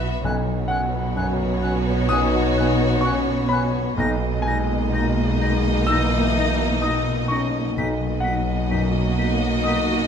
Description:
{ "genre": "cinematic, emotional film score for orchestra", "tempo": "64 BPM", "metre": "4/4", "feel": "rubato", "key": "B major", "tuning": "A4 = 440 Hz", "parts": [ { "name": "warm symphonic violin section", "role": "melody", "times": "0.0-10.1 s", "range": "C#5 to E5", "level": "-29 LUFS", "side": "left 1 dB", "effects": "none" }, { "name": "bright clarinet", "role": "second line", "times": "0.0-9.8 s", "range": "C#4 to D#4", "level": "-34 LUFS", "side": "left 1 dB", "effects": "none" }, { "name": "dark symphonic violin section", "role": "second line", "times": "0.0-10.1 s", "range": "D#4 to F#4", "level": "-30 LUFS", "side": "left 3 dB", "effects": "none" }, { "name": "warm grand piano", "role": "accompaniment", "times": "0.0-10.1 s", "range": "B1 to E6", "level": "-27 LUFS", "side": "left 1 dB", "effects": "none" }, { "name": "warm symphonic viola section", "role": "accompaniment", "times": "0.0-10.1 s", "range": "A#3 to B3", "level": "-29 LUFS", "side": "right 2 dB", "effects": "none" }, { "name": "concert harp", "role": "arpeggios", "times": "0.0-10.1 s", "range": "B2 to E5", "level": "-30 LUFS", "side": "left 9 dB", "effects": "none" }, { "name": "dark symphonic cello section", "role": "bass", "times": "0.0-10.1 s", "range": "B2", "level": "-28 LUFS", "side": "right 2 dB", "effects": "none" }, { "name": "rich symphonic double bass section", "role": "bass", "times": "0.0-10.1 s", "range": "B1", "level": "-26 LUFS", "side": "right 3 dB", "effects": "none" }, { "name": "bright concert flute", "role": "second line", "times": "0.3-9.8 s", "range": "F#6 to B6", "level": "-33 LUFS", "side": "left 2 dB", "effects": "none" }, { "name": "mellow French horn section", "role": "sustained chords", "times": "0.7-10.1 s", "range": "E3 to D#4", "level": "-27 LUFS", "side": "left 3 dB", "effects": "none" } ], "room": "light reverb", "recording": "close, detailed microphones", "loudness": "-19 LUFS", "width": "side -7 dB against mid", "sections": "0.0-10.1 A section", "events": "none", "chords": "0.2 F#sus4/B; 4.0 G#sus2/B; 7.8 Bmaj7" }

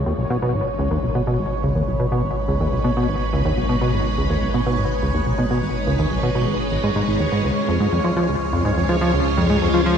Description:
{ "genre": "ambient, sequencer-driven space music", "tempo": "124 BPM", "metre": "4/4", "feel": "straight", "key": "G# dorian", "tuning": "A4 = 440 Hz", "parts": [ { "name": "phased string machine", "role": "sustained chords", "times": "0.0-10.0 s", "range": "C#3 to B4", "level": "-26 LUFS", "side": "equal", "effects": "ensemble chorus, phaser" }, { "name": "plucky analog bass", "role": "riff", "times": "0.0-10.0 s", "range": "G#1 to E#3", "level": "-20 LUFS", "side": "equal", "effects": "analog chorus, ping-pong delay" }, { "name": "warm sub bass", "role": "bass", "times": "0.0-10.0 s", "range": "G#1 to C#2", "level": "-27 LUFS", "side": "equal", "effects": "tube saturation" }, { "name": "bubbling stepped-filter texture", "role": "texture", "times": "0.0-10.0 s", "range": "C#5", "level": "-27 LUFS", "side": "right 4 dB", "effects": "chorus, built-in reverb" } ], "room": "wet cathedral reverb, RT60 6.7 s", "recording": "in a vast, echoing space", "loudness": "-18 LUFS", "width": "side -7 dB against mid", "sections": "0.0-10.0 A section", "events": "fade-in on string machine 0.0-10.0", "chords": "0.0 G#m; 7.4 C#" }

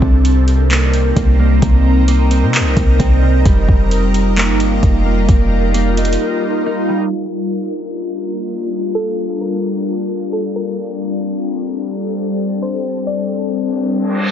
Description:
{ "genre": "hip hop, atmospheric cloud-rap", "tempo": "131 BPM", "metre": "4/4", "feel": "half-time", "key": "G minor", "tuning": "A4 = 439 Hz", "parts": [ { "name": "ethereal airy pad", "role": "sustained chords", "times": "0.0-14.3 s", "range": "G3 to Bb4", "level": "-18 LUFS", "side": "left 2 dB", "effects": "ensemble chorus, built-in reverb, phaser, sidechain pumping" }, { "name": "mellow electric guitar", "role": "arpeggios", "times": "0.0-7.1 s", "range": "C3 to Eb4", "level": "-22 LUFS", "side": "right 5 dB", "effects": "wide subtle chorus, ping-pong delay" }, { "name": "clean 808-style bass", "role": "bass", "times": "0.0-6.2 s", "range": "F1 to C3", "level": "-13 LUFS", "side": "equal", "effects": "none" }, { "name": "smooth R&B drum kit", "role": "drums", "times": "0.0-6.2 s", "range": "handclaps, hi-hat, kick drum", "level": "-16 LUFS", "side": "equal", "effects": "none" }, { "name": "soft round pluck", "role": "melody", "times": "8.9-13.5 s", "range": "A4 to D5", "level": "-24 LUFS", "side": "equal", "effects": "chorus, ping-pong delay" }, { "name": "reverse cymbal", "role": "sound effects", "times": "13.7-14.3 s", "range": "none", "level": "-24 LUFS", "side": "right 2 dB", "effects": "none" } ], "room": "digital ambience", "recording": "low-pass filter, nothing above 7.9 kHz", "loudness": "-13 LUFS", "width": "side -10 dB against mid", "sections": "0.0-7.1 A section; 7.1-14.3 B section", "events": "break 6.2-7.1; filter sweep 7.1-14.3; reverse cymbal 13.7-14.3", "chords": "0.0 Cm7; 3.5 F9sus4; 7.1 Gm7; 10.8 D7sus4" }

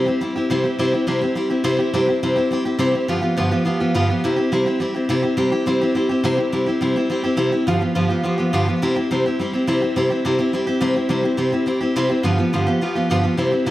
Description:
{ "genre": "rock", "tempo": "210 BPM", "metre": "4/4", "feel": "straight", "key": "C major", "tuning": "A4 = 436 Hz", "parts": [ { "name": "picked steel-string acoustic guitar", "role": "solo", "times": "0.0-13.7 s", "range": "G2 to G4", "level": "-17 LUFS", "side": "equal", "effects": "slapback echo" } ], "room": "light reverb", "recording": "none", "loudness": "-17 LUFS", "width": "side -15 dB against mid", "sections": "0.0-5.4 A section; 5.4-13.7 B section", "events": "none", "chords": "0.0 C; 3.1 G7; 4.2 C; 7.7 G7; 8.8 C; 12.2 G7" }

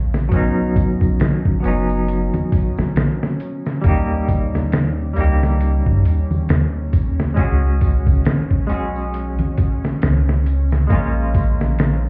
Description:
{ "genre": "trip hop", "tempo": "68 BPM", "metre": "4/4", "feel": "swing 57% on 16ths", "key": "unclear", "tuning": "A4 = 436 Hz", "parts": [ { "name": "semi-hollow electric guitar", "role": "accompaniment", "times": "0.0-12.1 s", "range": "F#3 to Ab4", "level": "-26 LUFS", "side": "equal", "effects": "tremolo, tape echo" }, { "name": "soft dub sub bass", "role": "bass", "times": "0.0-12.1 s", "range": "F#1 to G2", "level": "-21 LUFS", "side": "equal", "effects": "none" }, { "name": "bowed-like drone", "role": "texture", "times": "0.0-12.1 s", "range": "Db4", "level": "-34 LUFS", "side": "equal", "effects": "built-in reverb" }, { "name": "trip hop sampler-style drum kit", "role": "drums", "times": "0.1-12.0 s", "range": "hi-hat, kick drum, snare drum", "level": "-21 LUFS", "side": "equal", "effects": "none" }, { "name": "tambourine and congas", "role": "percussion", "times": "0.1-12.0 s", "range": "none", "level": "-27 LUFS", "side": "equal", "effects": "none" } ], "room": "digital ambience", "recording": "heard muffled through a wall, club reverb, vinyl crackle, EQ", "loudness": "-18 LUFS", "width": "mono", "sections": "0.0-12.1 A section", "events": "none", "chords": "0.3 Badd9; 3.8 Eb; 7.4 Dbsus4; 10.9 Bbm7" }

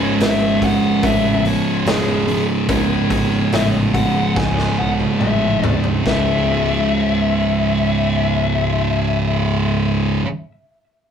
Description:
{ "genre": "stoner and doom metal", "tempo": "71 BPM", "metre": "4/4", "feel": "straight", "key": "C# minor", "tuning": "A4 = 440 Hz", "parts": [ { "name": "fuzz lead guitar", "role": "melody", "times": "0.0-10.2 s", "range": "G#4 to G#5", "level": "-22 LUFS", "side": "left 4 dB", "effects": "distortion" }, { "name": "thick fuzz guitar", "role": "riff", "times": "0.0-10.3 s", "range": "C#2 to C#3", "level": "-23 LUFS", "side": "left 6 dB", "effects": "distortion" }, { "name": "thick fuzz guitar", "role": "riff", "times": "0.0-10.3 s", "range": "C#2 to C#3", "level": "-18 LUFS", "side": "right 4 dB", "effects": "distortion" }, { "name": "overdriven fingered electric bass", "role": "bass", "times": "0.2-10.2 s", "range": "C#1 to C#2", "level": "-25 LUFS", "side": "equal", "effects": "tube saturation" }, { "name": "raw garage drum kit", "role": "drums", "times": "0.2-6.3 s", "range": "hi-hat, kick drum, snare drum, toms", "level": "-23 LUFS", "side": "equal", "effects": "none" } ], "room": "moderate small room ambience, RT60 0.5 s", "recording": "rough rehearsal-room recording", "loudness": "-15 LUFS", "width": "side -8 dB against mid", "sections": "0.0-6.1 A section; 6.1-9.5 B section", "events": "slowing down 0.0-6.1; drum fill 4.4-6.1", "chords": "0.0 C#m" }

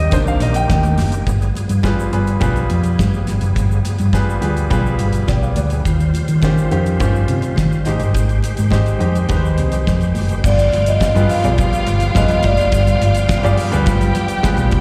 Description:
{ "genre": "disco", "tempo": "105 BPM", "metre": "4/4", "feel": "straight", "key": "unclear", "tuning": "A4 = 440 Hz", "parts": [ { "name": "warm concert grand piano", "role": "accompaniment", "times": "0.0-14.8 s", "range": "Eb3 to G5", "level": "-24 LUFS", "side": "equal", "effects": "slapback echo" }, { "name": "bright tonewheel organ", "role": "sustained chords", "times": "0.0-14.8 s", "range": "Db3 to G5", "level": "-29 LUFS", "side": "equal", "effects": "chorus vibrato, fast rotary speaker" }, { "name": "hollow-body short-scale fingered electric bass", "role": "bass", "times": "0.0-14.8 s", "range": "F1 to Eb3", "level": "-19 LUFS", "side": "equal", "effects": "none" }, { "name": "damped 70s drum kit", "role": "drums", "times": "0.1-14.8 s", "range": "crash cymbal, hi-hat, kick drum, snare drum", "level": "-23 LUFS", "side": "equal", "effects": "none" }, { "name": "congas", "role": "percussion", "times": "0.1-14.8 s", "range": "none", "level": "-31 LUFS", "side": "equal", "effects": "none" }, { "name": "tube shaker", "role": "percussion", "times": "0.1-14.7 s", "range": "none", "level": "-43 LUFS", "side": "equal", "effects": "none" }, { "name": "warm studio string section", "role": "second line", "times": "10.4-14.8 s", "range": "F4 to G5", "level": "-27 LUFS", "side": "equal", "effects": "slapback echo" }, { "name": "vibraphone with soft mallets", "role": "melody", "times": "10.5-13.6 s", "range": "D5 to F5", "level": "-21 LUFS", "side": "equal", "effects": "none" } ], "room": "little or no reverb", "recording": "live gig heard through the venue's PA, recital hall reverb", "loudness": "-16 LUFS", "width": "mono", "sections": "0.0-1.3 A section; 1.3-10.4 B section; 10.4-14.8 C section", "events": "grand piano solo 0.0-1.3; grand piano fill 4.7-5.9", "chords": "0.1 Cm7; 1.3 G7b9; 5.9 Eb13; 7.9 Abmaj7; 10.4 G7b9" }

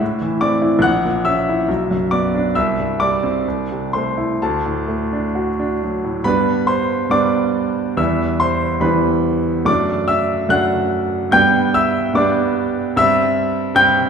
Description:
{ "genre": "classical, romantic character piece for solo piano", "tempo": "62-75 BPM", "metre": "2/4", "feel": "rubato", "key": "G major", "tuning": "A4 = 439 Hz", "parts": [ { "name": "clear grand piano", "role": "solo", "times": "0.0-14.1 s", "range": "A#1 to G6", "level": "-15 LUFS", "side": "equal", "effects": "none" } ], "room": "wet recital hall reverb, RT60 1.7 s", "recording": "heard from further back in the room", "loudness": "-15 LUFS", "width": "side -6 dB against mid", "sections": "0.0-6.2 A section; 6.2-14.1 B section", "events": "none", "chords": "0.0 Am; 0.8 F#7/A#; 1.7 Bm; 2.5 C; 3.4 Am/C; 4.4 D; 6.2 G; 8.0 Em; 9.7 D/F#; 11.3 G; 13.0 C/G" }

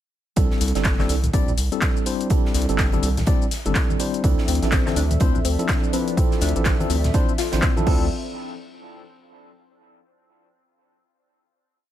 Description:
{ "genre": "deep house", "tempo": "124 BPM", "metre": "4/4", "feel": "swing 60% on 16ths", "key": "D minor", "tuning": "A4 = 439 Hz", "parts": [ { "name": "tine electric piano", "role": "stabs", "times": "0.4-8.1 s", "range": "F3 to D5", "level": "-26 LUFS", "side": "equal", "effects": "slow stereo tremolo, sidechain pumping, tape echo" }, { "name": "round analog bass", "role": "bass", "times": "0.4-8.1 s", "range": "G1 to D2", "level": "-23 LUFS", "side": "equal", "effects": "sidechain pumping" }, { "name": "big rock drum kit", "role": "drums", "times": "0.4-7.8 s", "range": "hi-hat, snare drum", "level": "-36 LUFS", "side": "right 2 dB", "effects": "high-pass filter on hats, high-pass filter on snare, high-pass filter on room" }, { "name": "electronic kick drum", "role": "drums", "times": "0.4-8.0 s", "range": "none", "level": "-21 LUFS", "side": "equal", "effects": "none" }, { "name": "punchy analog drum machine", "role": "drums", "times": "0.4-8.0 s", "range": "crash cymbal, handclaps, hi-hat, shaker", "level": "-28 LUFS", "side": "left 2 dB", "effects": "none" }, { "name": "congas", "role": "percussion", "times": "1.0-7.8 s", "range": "none", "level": "-30 LUFS", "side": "left 1 dB", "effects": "none" }, { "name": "hollow soft pad", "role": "sustained chords", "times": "4.2-8.1 s", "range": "F3 to E5", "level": "-32 LUFS", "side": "right 1 dB", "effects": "chorus, sidechain pumping" }, { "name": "soft round pluck", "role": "arpeggios", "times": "4.2-8.1 s", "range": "C4 to F4", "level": "-30 LUFS", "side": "left 6 dB", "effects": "chorus, sidechain pumping, dub echo" } ], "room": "small room ambience", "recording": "none", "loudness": "-18 LUFS", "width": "side -12 dB against mid", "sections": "0.4-8.1 drop; 8.1-10.0 final hit", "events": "drop 0.4-8.1", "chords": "0.4 C6; 4.2 Dm9; 8.1 N.C." }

